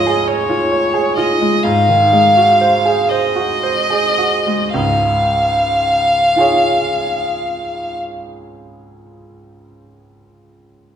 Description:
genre	classical, romantic duo for violin and grand piano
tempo	34-46 BPM (dotted quarters)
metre	12/8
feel	rubato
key	Db major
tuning	A4 = 440 Hz
part	clear violin	melody	0.0-8.0 s	Db5 to F5	-14 LUFS	equal	none
part	bright grand piano	accompaniment	0.0-11.0 s	Db2 to Db5	-18 LUFS	right 2 dB	none
room	wet recital hall reverb, RT60 1.6 s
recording	dark, warm production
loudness	-12 LUFS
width	side -8 dB against mid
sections	0.0-4.8 A section; 4.8-11.0 B section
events	slowing down 0.0-4.8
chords	0.0 Db/Ab; 1.6 Ab7; 4.8 Db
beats	0.28 1.65 3.11 | 4.75 6.36 7.90 9.43

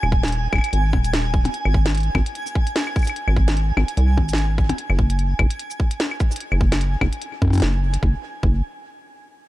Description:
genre	IDM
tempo	148 BPM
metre	4/4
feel	swing 56% on 16ths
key	unclear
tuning	A4 = 440 Hz
part	deep acid bass	bass	0.0-8.6 s	Eb1 to Gb2	-19 LUFS	equal	none
part	glitchy drum kit	drums	0.0-8.0 s	cabasa, claves, hi-hat, percussion blips, snare drum	-26 LUFS	left 2 dB	ping-pong delay
part	twinkling granular texture	texture	0.0-8.0 s	Ab5	-30 LUFS	right 3 dB	built-in reverb
part	electronic kick drum	drums	0.1-8.5 s	none	-20 LUFS	equal	none
room	little or no reverb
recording	dark, warm production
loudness	-18 LUFS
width	side -16 dB against mid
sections	0.0-8.0 A section; 8.0-9.5 B section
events	none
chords	0.0 Ebsus4; 1.5 N.C.; 4.8 Gbsus2; 8.0 N.C.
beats	0.32 0.73 1.14 | 1.54 1.95 2.35 2.76 | 3.16 3.57 3.97 4.38 | 4.78 5.19 5.59 6.00 | 6.41 6.81 7.22 7.62 | 8.03 8.43

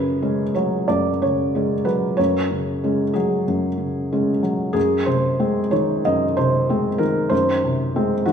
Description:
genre	neoclassical minimalist piano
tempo	93 BPM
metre	4/4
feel	rubato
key	unclear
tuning	A4 = 440 Hz
part	felt-muted upright piano	solo	0.0-8.3 s	F#2 to D#5	-18 LUFS	equal	none
room	wet recital hall reverb, RT60 1.4 s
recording	none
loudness	-18 LUFS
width	side -7 dB against mid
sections	0.0-8.3 A section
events	none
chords	0.0 F#sus2; 4.8 G#7/F#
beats	0.22 0.89 1.54 | 2.18 2.83 3.47 4.11 | 4.75 5.40 6.05 6.68 | 7.32 7.95

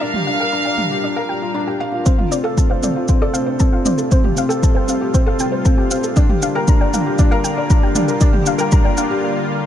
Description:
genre	piano and strings electronica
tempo	117 BPM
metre	4/4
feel	straight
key	D minor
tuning	A4 = 440 Hz
part	rich symphonic violin section	melody	0.0-1.6 s	F5	-23 LUFS	right 2 dB	none
part	lush unison pad	sustained chords	0.0-9.7 s	C3 to Bb4	-24 LUFS	left 1 dB	chorus, sidechain pumping
part	soft round pluck	arpeggios	0.0-9.0 s	C5 to Bb5	-27 LUFS	left 2 dB	chorus, sidechain pumping, ping-pong delay
part	felt-muted upright piano	riff	0.0-9.7 s	C4 to F5	-20 LUFS	left 2 dB	ping-pong delay
part	electronic toms and shaker	drums	0.1-9.1 s	none	-24 LUFS	right 3 dB	low-pass filter on toms, low-pass filter on perc
part	warm sub bass	bass	2.1-9.2 s	none	barely audible	none	none
part	electronic kick drum	drums	2.1-8.8 s	none	-14 LUFS	equal	none
room	light reverb, digital ambience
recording	dark, warm production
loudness	-14 LUFS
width	side -10 dB against mid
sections	0.0-2.1 A section; 2.1-9.7 B section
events	build-up 2.1-9.7; break 9.2-9.7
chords	0.0 Gm7; 2.1 Dm7; 4.1 Fadd9; 6.2 Gm7; 8.2 Bb6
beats	| 0.01 0.53 1.04 1.55 | 2.06 2.58 3.09 3.60 | 4.12 4.63 5.14 5.65 | 6.17 6.68 7.19 7.71 | 8.22 8.73 9.24

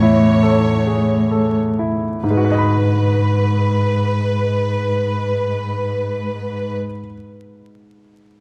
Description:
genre	cinematic, emotional film score for orchestra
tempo	46 BPM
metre	4/4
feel	rubato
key	G# phrygian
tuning	A4 = 440 Hz
part	clear studio violin section	melody	0.0-6.8 s	B4 to C#5	-25 LUFS	equal	none
part	bright baby grand piano	accompaniment	0.0-8.4 s	E2 to B5	-23 LUFS	equal	none
part	rich studio cello section	bass	0.0-6.8 s	G#2 to A2	-20 LUFS	equal	none
room	moderate scoring stage reverb, RT60 2.1 s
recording	close, detailed microphones, vinyl crackle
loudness	-18 LUFS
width	mono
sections	0.0-2.2 A section; 2.2-7.4 B section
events	slowing down 0.0-2.2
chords	0.0 A; 2.2 G#m7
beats	0.87 | 2.23 3.53 4.84 6.14

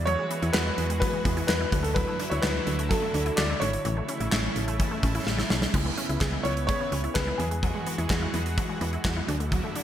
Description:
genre	synth-pop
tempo	127 BPM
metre	4/4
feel	straight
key	C# phrygian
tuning	A4 = 441 Hz
part	lush unison pad	sustained chords	0.0-9.8 s	C#3 to F#4	-33 LUFS	right 1 dB	chorus
part	solid FM bass	bass	0.0-9.6 s	G#1 to E2	-29 LUFS	equal	none
part	clear concert grand piano	melody	0.1-8.5 s	G#4 to D5	-30 LUFS	equal	lush chorus, digital delay
part	resonant blip pluck	arpeggios	0.1-9.8 s	E3 to E5	-35 LUFS	left 1 dB	chorus, digital delay
part	gated 80s drum kit	drums	0.1-9.8 s	crash cymbal, handclaps, hi-hat, kick drum, snare drum	-28 LUFS	equal	none
room	moderate lush hall reverb, RT60 1.9 s, studio reverb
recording	bright 1980s-style digital production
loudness	-24 LUFS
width	side -10 dB against mid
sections	0.0-5.7 A section; 5.7-9.8 B section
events	drum fill 5.3-5.7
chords	0.0 Eadd9; 1.7 Dadd9; 3.9 A; 5.7 C#m7; 7.4 Eadd9; 9.3 Dadd9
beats	| 0.07 0.54 1.01 1.49 | 1.96 2.43 2.90 3.38 | 3.85 4.32 4.79 5.27 | 5.74 6.21 6.68 7.16 | 7.63 8.10 8.57 9.05 | 9.52

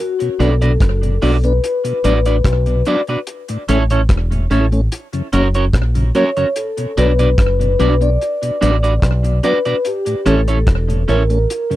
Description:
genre	roots reggae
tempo	73 BPM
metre	4/4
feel	straight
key	B minor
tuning	A4 = 440 Hz
part	vibraphone with soft mallets	melody	0.0-11.8 s	F#4 to D5	-19 LUFS	left 2 dB	tape echo
part	mellow tonewheel organ	accompaniment	0.2-11.8 s	F#2 to D4	-20 LUFS	left 2 dB	slow rotary speaker
part	cloth-damped thuddy drum kit	drums	0.2-11.8 s	hi-hat, kick drum, rim click	-18 LUFS	equal	slapback echo
part	electric guitar at the edge of break-up	accompaniment	0.4-11.2 s	C#4 to D5	-20 LUFS	right 3 dB	lush chorus, tape echo
part	deep dub fingered electric bass	bass	0.4-11.5 s	E1 to B1	-15 LUFS	equal	transformer saturation
room	little or no reverb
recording	dry, close 1970s-style studio recording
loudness	-13 LUFS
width	side -15 dB against mid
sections	0.0-11.8 A section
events	none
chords	0.0 Bm; 3.3 A; 4.9 F#; 6.6 Bm; 9.8 A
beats	0.81 1.63 2.45 | 3.27 4.09 4.92 5.74 | 6.56 7.38 8.20 9.03 | 9.85 10.67 11.49

